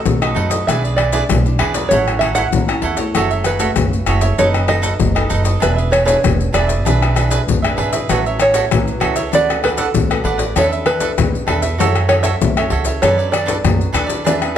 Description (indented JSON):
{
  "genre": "samba and choro",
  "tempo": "97 BPM",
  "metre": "4/4",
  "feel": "straight",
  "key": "unclear",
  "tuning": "A4 = 440 Hz",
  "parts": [
    { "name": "open-back banjo", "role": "melody", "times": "0.0-14.3 s", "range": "A4 to F#5", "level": "-18 LUFS", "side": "right 2 dB", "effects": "none" },
    { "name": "nylon-string guitar", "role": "accompaniment", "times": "0.0-14.6 s", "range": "A2 to A4", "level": "-25 LUFS", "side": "left 3 dB", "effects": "none" },
    { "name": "upright bass", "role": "bass", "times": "0.1-14.6 s", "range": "E1 to F#2", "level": "-20 LUFS", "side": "right 1 dB", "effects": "none" },
    { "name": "maracas, surdo, pandeiro and tamborim", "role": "percussion", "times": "0.1-14.6 s", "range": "none", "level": "-18 LUFS", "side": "left 5 dB", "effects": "none" },
    { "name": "cavaquinho", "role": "accompaniment", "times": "0.2-14.6 s", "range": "D4 to F#5", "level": "-22 LUFS", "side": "right 6 dB", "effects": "none" }
  ],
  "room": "moderate large studio reverb, RT60 1.1 s",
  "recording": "none",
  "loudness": "-13 LUFS",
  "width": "side -10 dB against mid",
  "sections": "0.0-14.6 A section",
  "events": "none",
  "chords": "0.0 B7; 0.7 E7/B; 1.9 A6; 3.2 F#m9; 4.4 B7/F#; 5.6 E7; 8.1 A69; 9.3 D6; 10.6 E7sus4; 11.8 F#m7; 13.0 Bm7/F#"
}